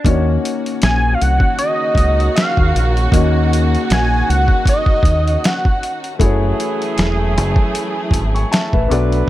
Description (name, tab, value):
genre	R&B, neo-soul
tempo	78 BPM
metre	4/4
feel	swing 56% on 16ths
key	unclear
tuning	A4 = 440 Hz
part	warm concert grand piano	accompaniment	0.0-9.3 s	A3 to Db6	-22 LUFS	left 4 dB	plate reverb
part	warm studio string section	sustained chords	0.0-9.3 s	Eb3 to Ab4	-26 LUFS	left 2 dB	plate reverb
part	boom bap sampler-style drum kit	drums	0.0-9.3 s	hi-hat, kick drum, snare drum	-16 LUFS	equal	none
part	deep dub fingered electric bass	bass	0.1-9.2 s	Fb1 to Eb2	-16 LUFS	equal	none
part	fat analog lead	melody	0.8-6.0 s	Eb5 to Ab5	-19 LUFS	equal	plate reverb, tape echo
part	mellow horn section	stabs	1.6-9.3 s	Db3 to B4	-24 LUFS	right 6 dB	plate reverb
room	light reverb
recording	none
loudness	-13 LUFS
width	side -14 dB against mid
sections	0.0-9.3 A section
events	none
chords	0.0 Ebm7; 6.2 Gbm9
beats	| 0.05 0.81 1.58 2.35 | 3.12 3.89 4.66 5.43 | 6.20 6.97 7.74 8.51 | 9.28